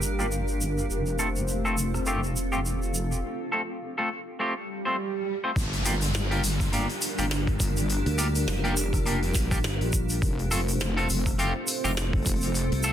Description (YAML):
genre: glitch hop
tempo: 103 BPM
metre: 4/4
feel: swing 57% on 16ths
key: G minor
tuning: A4 = 441 Hz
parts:
  - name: warm analog pad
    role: sustained chords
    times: 0.0-12.9 s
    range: G3 to C5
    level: -35 LUFS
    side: equal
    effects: chorus, sidechain pumping
  - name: wobble bass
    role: bass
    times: 0.0-12.7 s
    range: F1 to Bb1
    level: -28 LUFS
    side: equal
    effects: chorus
  - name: tube shaker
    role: percussion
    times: 0.0-12.9 s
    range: none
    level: -34 LUFS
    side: right 2 dB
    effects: none
  - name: granular cloud pad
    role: texture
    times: 0.0-12.9 s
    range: C4 to F5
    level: -34 LUFS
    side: equal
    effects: built-in reverb, sidechain pumping
  - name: clean electric guitar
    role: stabs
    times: 0.2-12.9 s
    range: A3 to C5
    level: -30 LUFS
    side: equal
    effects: lush chorus, sidechain pumping, low-pass filter, dub echo
  - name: glitchy drum kit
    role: drums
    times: 1.9-2.0, 5.6-12.8 s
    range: hi-hat, rim click, snare drum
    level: -33 LUFS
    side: left 1 dB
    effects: soft clipping on snare
  - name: swell and downlifter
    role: sound effects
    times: 4.6-10.2 s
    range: none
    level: -35 LUFS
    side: right 3 dB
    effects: none
  - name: electronic kick drum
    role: drums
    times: 5.6-12.4 s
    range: none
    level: -27 LUFS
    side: equal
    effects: overdrive
  - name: fingered electric bass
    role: bass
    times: 8.1-12.9 s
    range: G1 to D2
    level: -26 LUFS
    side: equal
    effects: tube saturation
room: light reverb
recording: dense, heavily limited modern master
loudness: -24 LUFS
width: side -10 dB against mid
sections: 0.0-5.6 A section; 5.6-12.9 B section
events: break 3.2-5.6; swell 4.6-5.6; drop 5.6-12.9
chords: 0.0 Gm7; 0.9 F; 5.6 Gm7; 10.2 F